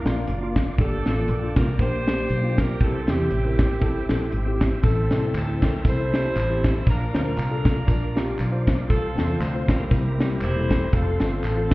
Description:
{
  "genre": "uptempo gospel",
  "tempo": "118 BPM",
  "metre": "4/4",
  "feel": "swing 56% on 8ths",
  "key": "unclear",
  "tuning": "A4 = 439 Hz",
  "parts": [
    { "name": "clear saxophone section", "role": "melody", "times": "0.0-11.7 s", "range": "C4 to C5", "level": "-29 LUFS", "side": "equal", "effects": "slapback echo" },
    { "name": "tine electric piano", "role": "accompaniment", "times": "0.0-11.7 s", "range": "G2 to C5", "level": "-28 LUFS", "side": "left 1 dB", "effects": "medium stereo tremolo" },
    { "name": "bright tonewheel organ", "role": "sustained chords", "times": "0.0-11.7 s", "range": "Bb3 to E6", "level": "-37 LUFS", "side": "right 1 dB", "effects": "slow rotary speaker, overdrive, chorus vibrato" },
    { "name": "fingered electric bass", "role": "bass", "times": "0.1-11.7 s", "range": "E1 to E2", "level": "-25 LUFS", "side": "equal", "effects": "none" },
    { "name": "crisp fusion drum kit", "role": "drums", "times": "0.1-11.7 s", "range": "hi-hat, kick drum, snare drum", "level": "-23 LUFS", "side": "equal", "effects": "none" },
    { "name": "tambourine and handclaps", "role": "percussion", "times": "4.8-11.6 s", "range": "none", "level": "-40 LUFS", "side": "left 2 dB", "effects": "none" }
  ],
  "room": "light reverb, studio ambience",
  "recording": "heard muffled through a wall, stone room reverb, EQ",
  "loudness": "-20 LUFS",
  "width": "side -20 dB against mid",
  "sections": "0.0-11.7 A section",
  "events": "none",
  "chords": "0.0 Bb; 0.8 Gm; 2.8 C; 4.8 Am; 6.9 Bb; 8.9 F/C; 9.9 C7; 10.9 F"
}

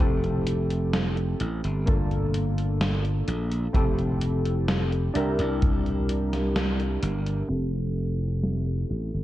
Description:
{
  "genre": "vaporwave",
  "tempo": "64 BPM",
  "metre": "4/4",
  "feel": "straight",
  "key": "F major",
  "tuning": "A4 = 440 Hz",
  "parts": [
    { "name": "warbly lo-fi synth keys", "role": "accompaniment", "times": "0.0-9.2 s", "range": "Bb3 to Bb4", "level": "-30 LUFS", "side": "equal", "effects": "wide subtle chorus, tape echo" },
    { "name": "glassy slap bass", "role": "bass", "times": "0.0-9.2 s", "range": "F1 to C2", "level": "-26 LUFS", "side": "equal", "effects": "none" },
    { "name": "gated 80s digital drum machine", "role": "drums", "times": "0.0-9.2 s", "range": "hi-hat, snare drum", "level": "-30 LUFS", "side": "right 1 dB", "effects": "gated reverb, gated reverb snare, vintage 12-bit sampler grit" },
    { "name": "kick drum", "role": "drums", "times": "0.0-5.8 s", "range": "none", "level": "-26 LUFS", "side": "equal", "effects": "vintage 12-bit sampler grit" }
  ],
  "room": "light reverb, small room ambience",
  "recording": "dark, warm production, cassette tape, low-pass filter",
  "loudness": "-23 LUFS",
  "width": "side -14 dB against mid",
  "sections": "0.0-7.5 A section; 7.5-9.2 B section",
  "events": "kick drops out 6.6-7.5; band accent 6.6-7.0",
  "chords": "0.0 Fmaj9; 1.9 Gm9; 3.7 Fmaj9; 5.2 C9; 7.5 Fmaj9"
}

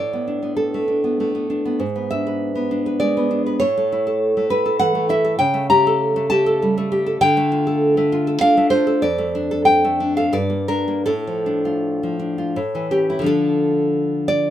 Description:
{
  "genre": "romantic piece for solo classical guitar",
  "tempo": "76-105 BPM",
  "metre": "3/4",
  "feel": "rubato",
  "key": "A major, D minor from 5.4 s",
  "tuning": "A4 = 439 Hz",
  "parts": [
    { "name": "nylon-string guitar", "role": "solo", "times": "0.0-14.5 s", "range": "F2 to Bb5", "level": "-17 LUFS", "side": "equal", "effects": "none" }
  ],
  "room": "light reverb",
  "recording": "minimal, uncompressed stereo recording",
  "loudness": "-17 LUFS",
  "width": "side -11 dB against mid",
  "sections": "0.0-13.3 A section; 13.3-14.5 B section",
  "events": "none",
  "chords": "0.0 Bm7/A; 1.8 E7/G#; 3.6 A; 5.4 A7/C#; 7.2 Dm; 9.0 Dm/F; 10.4 Gm; 11.1 Dm/A; 12.6 A; 13.3 Dm"
}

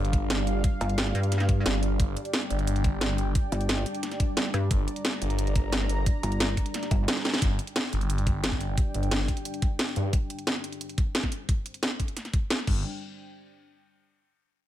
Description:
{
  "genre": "dark technical drum and bass",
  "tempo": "177 BPM",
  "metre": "4/4",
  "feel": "straight",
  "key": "G minor",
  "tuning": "A4 = 440 Hz",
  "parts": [
    { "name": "dark analog pad", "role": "sustained chords", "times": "0.0-12.8 s", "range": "G3 to Bb5", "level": "-34 LUFS", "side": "equal", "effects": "chorus, sidechain pumping" },
    { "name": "phased detuned saw bass", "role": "bass", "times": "0.0-10.1, 12.7-12.8 s", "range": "G1 to G2", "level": "-27 LUFS", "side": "equal", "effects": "phaser, overdrive" },
    { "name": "drum and bass drum kit", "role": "drums", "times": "0.0-12.7 s", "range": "crash cymbal, hi-hat, snare drum", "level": "-29 LUFS", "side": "equal", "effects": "overdrive, studio reverb" },
    { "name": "electronic kick drum", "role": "drums", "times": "0.1-12.7 s", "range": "none", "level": "-26 LUFS", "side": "equal", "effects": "studio reverb" },
    { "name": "pulsing pluck wobble bass", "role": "bass", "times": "0.8-7.1 s", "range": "G1 to G2", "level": "-26 LUFS", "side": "equal", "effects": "chorus" }
  ],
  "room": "digital ambience",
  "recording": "none",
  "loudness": "-25 LUFS",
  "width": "side -12 dB against mid",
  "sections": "0.0-7.4 A section; 7.4-12.8 B section; 12.8-14.2 C section",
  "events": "drop 0.0-7.4; drum fill 7.2; band accent 7.3; filter sweep on analog synth pad 7.4-12.8",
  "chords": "0.0 G5; 12.8 N.C."
}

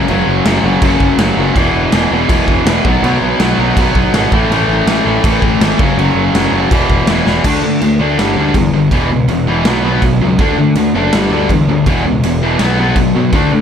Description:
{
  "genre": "punk rock",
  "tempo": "163 BPM",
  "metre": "4/4",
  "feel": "straight",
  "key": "unclear",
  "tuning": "A4 = 440 Hz",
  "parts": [
    { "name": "distorted electric guitar", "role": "riff", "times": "0.0-13.6 s", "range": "E2 to D4", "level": "-15 LUFS", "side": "left 10 dB", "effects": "distortion" },
    { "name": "tight distorted guitar", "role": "riff", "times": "0.0-13.6 s", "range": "E2 to D4", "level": "-16 LUFS", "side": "right 11 dB", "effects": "distortion" },
    { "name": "fuzz picked electric bass", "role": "bass", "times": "0.0-13.6 s", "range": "E1 to D3", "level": "-17 LUFS", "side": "right 1 dB", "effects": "overdrive" },
    { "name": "raw garage drum kit", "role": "drums", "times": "0.1-13.4 s", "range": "crash cymbal, kick drum, snare drum", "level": "-16 LUFS", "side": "right 1 dB", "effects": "none" }
  ],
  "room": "light reverb",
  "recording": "none",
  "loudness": "-10 LUFS",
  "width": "side -8 dB against mid",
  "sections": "0.0-7.4 A section; 7.4-13.6 B section",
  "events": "drum fill 7.3; half time 7.4-13.6",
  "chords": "0.0 F#5; 1.6 E5; 2.9 B5; 4.3 A5; 5.8 F#5; 6.7 E5; 7.4 D5; 8.2 G5; 8.9 E5; 9.7 B5; 10.4 D; 11.1 G5; 11.9 E5; 12.6 B5"
}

